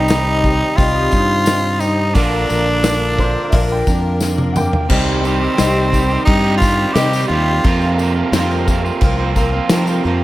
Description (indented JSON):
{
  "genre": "folk rock and heartland rock",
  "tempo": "88 BPM",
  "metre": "4/4",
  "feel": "straight",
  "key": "C minor",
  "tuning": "A4 = 440 Hz",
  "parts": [
    { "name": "raspy tenor saxophone", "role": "melody", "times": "0.0-7.9 s", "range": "C4 to G4", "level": "-19 LUFS", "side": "equal", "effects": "slapback echo" },
    { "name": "picked twelve-string acoustic guitar", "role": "accompaniment", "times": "0.0-10.2 s", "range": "Bb2 to Bb4", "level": "-22 LUFS", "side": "left 3 dB", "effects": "none" },
    { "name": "mellow tonewheel organ", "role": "sustained chords", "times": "0.0-10.2 s", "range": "G4 to Eb6", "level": "-30 LUFS", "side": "equal", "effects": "none" },
    { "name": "electric guitar at the edge of break-up", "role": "riff", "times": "0.0-10.2 s", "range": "F2 to G4", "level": "-22 LUFS", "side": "right 5 dB", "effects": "none" },
    { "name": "fingered electric bass", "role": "bass", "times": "0.0-10.2 s", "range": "Bb1 to F3", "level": "-19 LUFS", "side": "equal", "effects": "none" },
    { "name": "natural country drum kit", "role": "drums", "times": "0.1-9.9 s", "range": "crash cymbal, hi-hat, kick drum, snare drum, toms", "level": "-19 LUFS", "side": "equal", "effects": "none" },
    { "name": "tambourine", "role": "percussion", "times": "0.1-10.0 s", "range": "none", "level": "-33 LUFS", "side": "left 5 dB", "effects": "none" },
    { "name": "clear upright piano", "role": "second line", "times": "3.2-4.9 s", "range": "C5 to G5", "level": "-25 LUFS", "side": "left 1 dB", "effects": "slapback echo" }
  ],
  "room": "small room ambience",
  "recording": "none",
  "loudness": "-13 LUFS",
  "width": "side -16 dB against mid",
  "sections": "0.0-4.9 A section; 4.9-10.2 B section",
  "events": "drum fill 4.2-4.9",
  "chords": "0.0 Cm; 2.2 Bb; 4.9 Cm; 7.6 Fsus4",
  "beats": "0.10 0.79 1.48 | 2.16 2.85 3.54 4.22 | 4.91 5.59 6.28 6.96 | 7.65 8.33 9.02 9.70"
}